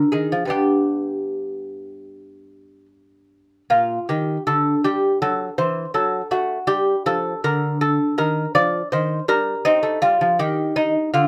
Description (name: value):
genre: classical, baroque-style dance for lute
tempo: 74-83 BPM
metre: 4/4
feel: rubato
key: unclear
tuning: A4 = 438 Hz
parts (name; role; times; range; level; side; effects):
- lute; solo; 0.0-11.3 s; G2 to D5; -20 LUFS; equal; none
room: light reverb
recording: none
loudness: -21 LUFS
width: mono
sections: 0.0-11.3 A section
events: none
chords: 0.0 Ddim (rootless); 0.5 G; 3.7 Gm/Bb; 5.2 Am6/E; 6.7 G5; 8.2 Eb; 9.6 A7(b5, no3) (rootless)